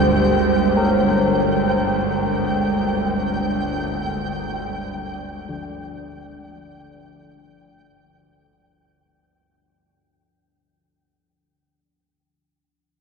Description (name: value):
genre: dark ambient drone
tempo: free time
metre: none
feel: none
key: unclear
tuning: A4 = 435 Hz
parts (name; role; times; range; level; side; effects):
- deep dark ambient pad; sustained chords; 0.0-9.2 s; G3 to D5; -21 LUFS; right 2 dB; chorus, built-in reverb
- bowed-like drone; drone; 0.0-9.3 s; G1 to D2; -25 LUFS; equal; built-in reverb
- flickering grainy texture; texture; 0.0-9.2 s; G5; -27 LUFS; equal; built-in reverb
- old church bells; arpeggios; 0.8-11.8 s; D3 to Bb4; -29 LUFS; left 3 dB; ping-pong delay
room: wet cathedral reverb, RT60 7.6 s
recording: in a vast, echoing space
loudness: -18 LUFS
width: side -5 dB against mid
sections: 0.0-9.2 A section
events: fade-out 0.0-9.2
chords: 0.0 Ab6/G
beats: free time